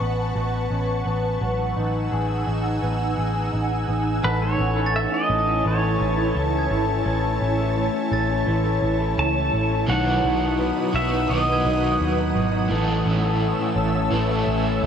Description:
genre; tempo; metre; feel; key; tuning
dream pop; 85 BPM; 4/4; straight; A lydian; A4 = 440 Hz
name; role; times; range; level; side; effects
ethereal airy pad; sustained chords; 0.0-14.9 s; D#4 to E6; -26 LUFS; right 1 dB; ensemble chorus, built-in reverb
electric guitar through a small old amp; arpeggios; 0.0-14.9 s; D#3 to A4; -26 LUFS; left 4 dB; lush chorus, diffuse ambient delay
vintage muted picked electric bass; bass; 0.0-14.9 s; G#1 to D#2; -24 LUFS; equal; none
pedal steel guitar; melody; 4.2-12.0 s; B4 to A5; -26 LUFS; right 1 dB; diffuse ambient delay
glockenspiel with hard plastic mallets; texture; 4.9-13.0 s; G#6 to A6; -34 LUFS; right 6 dB; diffuse ambient delay
overdriven semi-hollow guitar; accompaniment; 9.9-14.9 s; A2 to A4; -26 LUFS; right 3 dB; tremolo, analog chorus
room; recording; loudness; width
moderate plate reverb, RT60 2.7 s; dreamy mix soaked in reverb; -20 LUFS; side -8 dB against mid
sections
0.0-4.2 A section; 4.2-14.9 B section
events
none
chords
0.0 A69; 1.4 Emaj9/A; 4.2 A; 9.9 B; 12.7 A

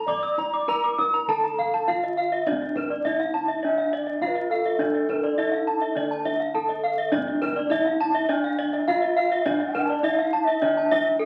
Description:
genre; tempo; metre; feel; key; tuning
Balinese gamelan; 103 BPM; 4/4; straight; D pelog; A4 = 445 Hz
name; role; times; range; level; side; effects
gamelan-type bronze metallophone; melody; 0.0-11.3 s; D4 to D5; -31 LUFS; equal; none
gamelan-type bronze metallophone; arpeggios; 0.0-11.1 s; Bb4 to Eb6+35c; -27 LUFS; equal; none
gamelan-type bossed gongs; bass; 0.0-11.3 s; D2 to D5; -37 LUFS; equal; none
kendang; percussion; 0.1-11.0 s; none; -41 LUFS; equal; none
gamelan-type bronze metallophone; arpeggios; 0.2-10.9 s; D5 to Eb6+35c; -35 LUFS; equal; none
breathy mellow bansuri; second line; 3.6-11.3 s; A4 to A5; -29 LUFS; equal; none
room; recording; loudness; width
wet club reverb, RT60 0.7 s; very old 78 rpm record, vinyl crackle; -24 LUFS; mono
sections
0.0-2.5 A section; 2.5-11.3 B section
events
none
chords
none

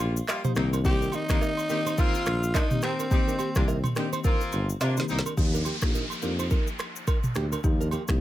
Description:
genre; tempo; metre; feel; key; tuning
afrobeats; 106 BPM; 4/4; swing 58% on 16ths; unclear; A4 = 440 Hz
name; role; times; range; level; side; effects
warm horn section; second line; 0.0-5.2 s; G3 to G4; -33 LUFS; left 1 dB; none
mellow tuba; bass; 0.0-8.2 s; G1 to C3; -28 LUFS; equal; none
afro-pop drum kit; drums; 0.0-8.2 s; finger snaps, handclaps, kick drum, rim click, shaker, snare drum, toms; -26 LUFS; equal; none
agogo bells and woodblock; percussion; 0.0-8.1 s; none; -38 LUFS; right 5 dB; none
buzzing marimba with medium mallets; accompaniment; 0.4-8.2 s; Eb3 to G4; -34 LUFS; left 6 dB; none
nylon-string guitar; riff; 0.4-8.0 s; Bb3 to C5; -36 LUFS; right 7 dB; ping-pong delay
growling tenor saxophone; melody; 0.9-3.9 s; C4 to G4; -31 LUFS; equal; ping-pong delay
downlifter; sound effects; 5.4-8.2 s; none; -36 LUFS; equal; none
room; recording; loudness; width
little or no reverb; none; -24 LUFS; side -14 dB against mid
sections
0.0-5.4 A section; 5.4-8.2 B section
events
drum fill 4.8-5.4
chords
0.0 Ebadd9; 0.6 Cm7; 5.4 Ebadd9

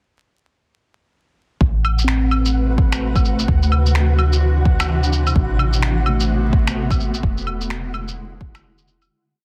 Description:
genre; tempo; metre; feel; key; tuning
future garage; 128 BPM; 4/4; swing 60% on 16ths; A dorian; A4 = 440 Hz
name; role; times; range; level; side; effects
granular cloud pad; sustained chords; 2.3-9.1 s; C3 to B4; -27 LUFS; equal; built-in reverb, vintage 12-bit sampler grit, sidechain pumping
soft 808-style bass; bass; 1.6-9.1 s; E1 to D2; -21 LUFS; equal; sidechain pumping
electronic kick drum; drums; 1.6-8.5 s; none; -20 LUFS; equal; overdrive
flickering grainy texture; texture; 1.8-9.1 s; F#5; -36 LUFS; equal; built-in reverb
electronic claves, shaker and finger snaps; drums; 1.8-9.1 s; none; -27 LUFS; equal; soft clipping on snare
mellow tine electric piano; accompaniment; 2.0-7.3 s; A3 to C4; -28 LUFS; equal; sidechain pumping, low-pass filter
room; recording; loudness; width
little or no reverb; dense, heavily limited modern master, vinyl crackle; -18 LUFS; mono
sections
1.6-9.1 groove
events
filter sweep on tine electric piano 1.6-9.1; fade-out 6.6-9.1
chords
1.6 Am69; 3.5 D9; 5.4 Am69; 7.2 E9

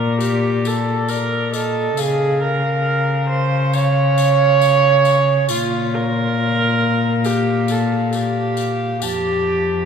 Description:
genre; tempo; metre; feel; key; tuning
classical, renaissance-style consort dance; 68 BPM; 4/4; straight; unclear; A4 = 440 Hz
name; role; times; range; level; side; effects
warm cornet; melody; 0.0-9.9 s; D5 to A5; -26 LUFS; left 3 dB; none
warm viola; second line; 0.0-9.9 s; F4 to Db5; -18 LUFS; right 3 dB; none
warm cello; bass; 0.0-9.9 s; F2 to Db3; -19 LUFS; left 1 dB; none
tambourine; percussion; 0.2-9.4 s; none; -33 LUFS; left 8 dB; none
room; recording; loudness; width
wet church reverb, RT60 3.2 s; heard from further back in the room; -15 LUFS; side -7 dB against mid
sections
0.0-9.9 A section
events
none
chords
0.0 Bb; 2.0 Db; 5.5 Bb5; 9.0 F

